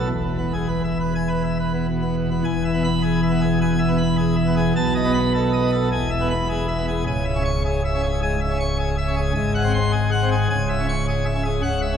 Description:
classical, organ toccata; 104 BPM; 4/4; straight; E major; A4 = 442 Hz
pipe organ, plenum; solo; 0.0-12.0 s; C#1 to C#6; -19 LUFS; equal
wet church reverb, RT60 3.1 s; minimal, uncompressed stereo recording; -19 LUFS; side -7 dB against mid
0.0-2.5 A section; 2.5-12.0 B section
0.1 E; 4.8 B7; 5.9 E; 7.1 C#m; 9.4 G#7; 10.5 C#m
| 0.10 0.69 1.28 1.87 | 2.46 3.04 3.61 4.19 | 4.76 5.34 5.91 6.49 | 7.06 7.63 8.21 8.78 | 9.35 9.93 10.50 11.07 | 11.64

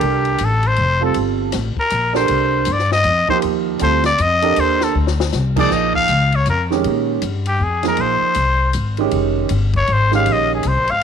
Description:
modal jazz; 158 BPM; 3/4; swing 63% on 8ths; C dorian, Bb dorian from 5.7 s; A4 = 440 Hz
trumpet with straight mute; melody; 0.0-11.0 s; G4 to F5; -18 LUFS; left 2 dB
warm concert grand piano; accompaniment; 0.0-10.6 s; Eb3 to Bb4; -20 LUFS; right 13 dB
upright bass; bass; 0.0-11.0 s; F1 to Bb2; -19 LUFS; left 2 dB; tube saturation
compact cocktail drum kit; drums; 0.0-10.9 s; crash cymbal, hi-hat, kick drum, ride cymbal, snare drum; -28 LUFS; left 9 dB
light reverb, small room ambience; 1960s-style stereo with parts hard left and right; -14 LUFS; side -7 dB against mid
0.0-5.7 A section; 5.7-11.0 A section
muted trumpet solo 0.0-11.0; drum fill 4.9-5.3
0.0 Cm69; 5.7 Bbm7; 8.0 Fmadd9; 10.3 Bbm9
| 0.03 0.41 0.78 | 1.16 1.54 1.92 | 2.30 2.68 3.06 | 3.43 3.81 4.19 | 4.57 4.95 5.33 | 5.71 6.09 6.46 | 6.84 7.22 7.60 | 7.98 8.36 8.74 | 9.12 9.50 9.88 | 10.26 10.64 11.02

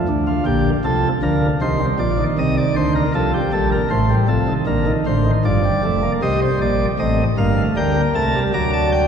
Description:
classical, baroque-style 4-part fugue for pipe organ; 78 BPM; 4/4; straight; Bb major; A4 = 440 Hz
chamber organ, principal chorus; solo; 0.0-9.1 s; F1 to Bb5; -16 LUFS; equal
wet church reverb, RT60 3.5 s; heard from further back in the room; -16 LUFS; side -7 dB against mid
0.0-6.2 A section; 6.2-9.1 B section
0.1 Bb; 1.6 Cm7; 3.2 F7; 4.7 Bb; 6.2 Cm; 7.8 Gm/D; 8.5 D
| 0.08 0.84 1.61 2.38 | 3.15 3.92 4.68 5.46 | 6.23 7.00 7.76 8.53

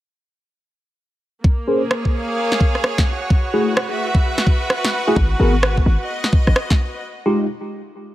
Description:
UK garage, two-step garage; 129 BPM; 4/4; swing 62% on 16ths; A4 = 439 Hz
electronic kick drum; drums; 1.4-6.8 s; -16 LUFS; equal; overdrive
clear studio string section; texture; 1.4-7.0 s; Bb3 to F5; -23 LUFS; right 1 dB; sidechain pumping
tine electric piano; stabs; 1.7-7.5 s; Ab3 to C5; -21 LUFS; equal; phaser, low-pass filter, tape echo
electronic rim click and snare drum; drums; 1.9-6.8 s; -21 LUFS; equal; overdrive
short 808-style bass; bass; 5.2-6.5 s; Ab1; -16 LUFS; equal
light reverb, digital ambience; -16 LUFS; side -15 dB against mid
1.4-8.1 A section
filter sweep on tine electric piano 1.4-8.1; break 7.0-8.1
1.4 Bbm7; 3.1 Gbm9; 5.2 Abm7; 7.0 Fm9
| 1.44 1.91 2.37 2.84 | 3.31 3.77 4.24 4.70 | 5.17 5.63 6.09 6.56 | 7.03

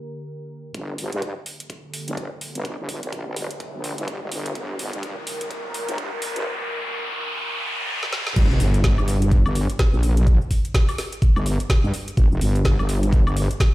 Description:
bass house; 126 BPM; 4/4; swing 60% on 16ths; G minor; A4 = 440 Hz
sweeping resonant pad; sustained chords; 0.0-8.3 s; D3 to Bb4; -36 LUFS; left 1 dB; chorus, sidechain pumping
wobble bass; bass; 0.7-13.5 s; F1 to G2; -22 LUFS; equal; chorus, overdrive, sidechain pumping, high-pass filter
electronic kick drum; drums; 0.7-13.7 s; -19 LUFS; equal; high-pass filter on kick, high-pass filter on room
garage drum kit; drums; 0.7-13.7 s; crash cymbal, hi-hat, shaker, snare drum, woodblock; -30 LUFS; equal; high-pass filter on hats, low-pass filter on hats, high-pass filter on snare, low-pass filter on snare, high-pass filter on cymbals, low-pass filter on cymbals, high-pass filter on perc, low-pass filter on perc, high-pass filter on room, low-pass filter on room
riser and impact; sound effects; 1.4-10.3 s; -30 LUFS; equal
little or no reverb; played on a big sound system in a bare room, large studio reverb, high-pass filter; -20 LUFS; side -17 dB against mid
0.7-8.4 A section; 8.4-13.7 B section
build-up 0.7-8.4; filter sweep on analog synth pad 0.7-8.4; filter sweep 0.7-8.4; riser 1.4-8.4; drum fill 4.6-6.5, 8.0-8.4; drop 8.4-13.7; impact 8.4-10.3
0.0 Gm; 0.7 Gmadd9; 8.4 N.C.
0.27 | 0.74 1.22 1.70 2.17 | 2.65 3.13 3.60 4.08 | 4.55 5.03 5.51 5.98 | 6.46 6.93 7.41 7.89 | 8.36 8.84 9.32 9.79 | 10.27 10.74 11.22 11.70 | 12.17 12.65 13.13 13.60

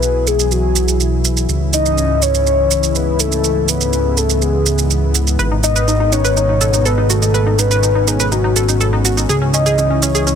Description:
progressive house; 123 BPM; 4/4; straight; C# minor; A4 = 439 Hz
soft octave-layered synth lead; melody; 0.0-10.4 s; F#4 to D#5; -18 LUFS; left 2 dB; chorus, phaser, ping-pong delay
lush unison pad; sustained chords; 0.0-10.4 s; G#2 to G#4; -20 LUFS; left 1 dB; chorus
fat analog bass; bass; 0.0-10.4 s; G#1 to C#2; -17 LUFS; equal
shaker; drums; 0.0-10.4 s; -20 LUFS; right 8 dB; overdrive
analog pluck; arpeggios; 5.4-10.4 s; C#4 to B4; -20 LUFS; right 1 dB; chorus, ping-pong delay
digital ambience; dense, heavily limited modern master; -12 LUFS; side -8 dB against mid
0.0-10.4 A section
0.0 Bsus4; 1.5 C#m; 5.4 G#m; 9.3 C#m
0.03 0.51 1.00 | 1.49 1.98 2.46 2.95 | 3.44 3.93 4.42 4.90 | 5.39 5.88 6.37 6.85 | 7.34 7.83 8.32 8.81 | 9.29 9.78 10.27

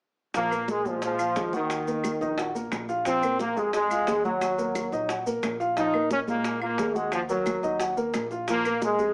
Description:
latin, salsa; 177 BPM; 4/4; straight; A4 = 439 Hz
dark baby grand piano; accompaniment; 0.3-9.1 s; F3 to Gb5; -32 LUFS; equal
upright bass; bass; 0.3-9.1 s; Bb1 to Bb2; -42 LUFS; equal
bongos; percussion; 0.3-9.0 s; -38 LUFS; equal
congas; percussion; 0.3-9.1 s; -39 LUFS; equal
maracas; percussion; 0.3-9.1 s; -48 LUFS; equal
brilliant trombone section; melody; 0.4-9.1 s; Eb3 to Eb4; -29 LUFS; equal; plate reverb
claves; percussion; 0.5-8.8 s; -43 LUFS; equal
moderate studio reverb, RT60 0.7 s; small speaker sound; -27 LUFS; mono
0.3-9.1 A section
0.3 Bb5; 1.7 Ebm; 3.1 Bb5; 4.4 Ebm; 5.8 Bb5; 7.1 Ebm; 8.5 Bb5
| 0.35 0.69 1.02 1.36 | 1.70 2.04 2.38 2.72 | 3.06 3.40 3.74 4.08 | 4.42 4.76 5.09 5.43 | 5.77 6.11 6.45 6.79 | 7.13 7.46 7.80 8.14 | 8.48 8.82

